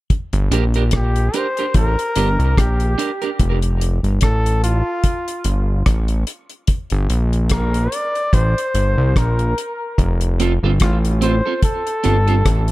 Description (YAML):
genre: dub reggae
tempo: 73 BPM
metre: 4/4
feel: swing 57% on 16ths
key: G minor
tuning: A4 = 440 Hz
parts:
  - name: deep reggae drum kit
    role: drums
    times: 0.1-12.7 s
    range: hi-hat, kick drum, rim click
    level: -19 LUFS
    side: equal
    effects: none
  - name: fat analog bass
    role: bass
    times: 0.3-12.7 s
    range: F1 to C2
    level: -16 LUFS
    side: equal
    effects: none
  - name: electric guitar at the edge of break-up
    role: accompaniment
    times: 0.5-3.3, 10.4-12.4 s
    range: C4 to Bb4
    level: -24 LUFS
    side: right 7 dB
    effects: tape echo
  - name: warm flugelhorn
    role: melody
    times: 1.0-12.7 s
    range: F4 to D5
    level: -22 LUFS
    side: left 1 dB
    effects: tape echo
room: small room ambience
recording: echo-heavy mix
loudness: -15 LUFS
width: side -18 dB against mid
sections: 0.1-12.7 A section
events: none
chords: 0.1 Gm; 3.4 F; 6.7 Gm; 10.0 F